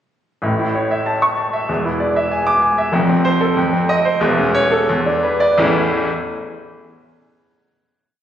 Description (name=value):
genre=classical, virtuoso piano study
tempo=84-98 BPM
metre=2/4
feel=rubato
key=A major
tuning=A4 = 439 Hz
part: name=clear grand piano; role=solo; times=0.4-6.1 s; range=E1 to D6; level=-15 LUFS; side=equal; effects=none
room=wet recital hall reverb, RT60 1.7 s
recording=recorded on a phone in the room, club reverb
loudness=-14 LUFS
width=side -10 dB against mid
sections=0.4-5.6 A section; 5.6-6.9 final chord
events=slowing down 2.3-5.6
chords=0.4 A; 1.7 E7; 2.9 F; 3.6 F5; 4.2 A/E; 4.9 E5; 5.6 A